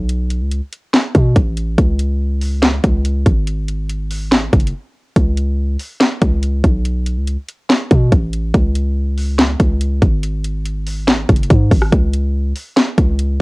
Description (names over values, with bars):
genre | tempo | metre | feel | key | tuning
hip hop, trap | 142 BPM | 4/4 | half-time | unclear | A4 = 439 Hz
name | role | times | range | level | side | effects
warm 808-style bass | bass | 0.0-13.4 s | F#1 to B2 | -16 LUFS | equal | none
trap drum kit | drums | 0.1-13.3 s | handclaps, hi-hat, kick drum, rim click, snare drum | -14 LUFS | equal | cassette tape
room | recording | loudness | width
little or no reverb | home recording on cassette | -14 LUFS | side -25 dB against mid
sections
0.0-13.4 A section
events
break 4.7-5.2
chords
none